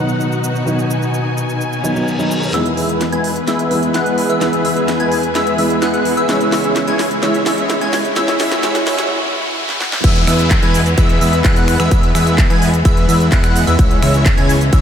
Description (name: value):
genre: EDM, festival progressive house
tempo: 128 BPM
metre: 4/4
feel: straight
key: E major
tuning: A4 = 440 Hz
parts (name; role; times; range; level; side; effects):
- felt-muted upright piano; accompaniment; 0.0-10.1 s; D#3 to E4; -21 LUFS; right 1 dB; sidechain pumping, ping-pong delay
- clear studio string section; sustained chords; 0.0-14.8 s; C#2 to G#5; -22 LUFS; left 2 dB; sidechain pumping
- house drum kit; drums; 0.1-14.8 s; crash cymbal, finger snaps, handclaps, hi-hat, ride cymbal, shaker, snare drum; -22 LUFS; equal; none
- reverse cymbal, riser and downlifter; sound effects; 1.8-13.8 s; none; -27 LUFS; equal; none
- plucky unison lead; arpeggios; 2.5-14.8 s; E6 to G#6; -22 LUFS; left 1 dB; analog chorus, sidechain pumping, ping-pong delay
- supersaw chords; riff; 2.5-14.8 s; G#3 to G#5; -18 LUFS; equal; cassette tape, sidechain pumping, low-pass filter, ping-pong delay
- fat analog bass; bass; 10.0-14.8 s; C#2 to E2; -16 LUFS; equal; sidechain pumping
- electronic kick drum; drums; 10.0-14.8 s; none; -13 LUFS; equal; none
room: wet huge ambient reverb, RT60 4.7 s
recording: dreamy mix soaked in reverb, high-pass filter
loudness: -12 LUFS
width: side -8 dB against mid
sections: 0.0-2.5 A section; 2.5-10.0 B section; 10.0-14.8 C section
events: reverse cymbal 1.8-2.5; build-up 2.5-10.0; drum fill 2.5-9.1, 9.7-10.0; filter sweep on supersaw synth 2.5-10.0; filter sweep on digital synth lead 2.5-10.0; filter sweep 2.5-10.0; break 9.1-10.0; drop 10.0-14.8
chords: 0.0 B; 2.5 E; 6.3 C#m; 10.0 E; 13.8 C#m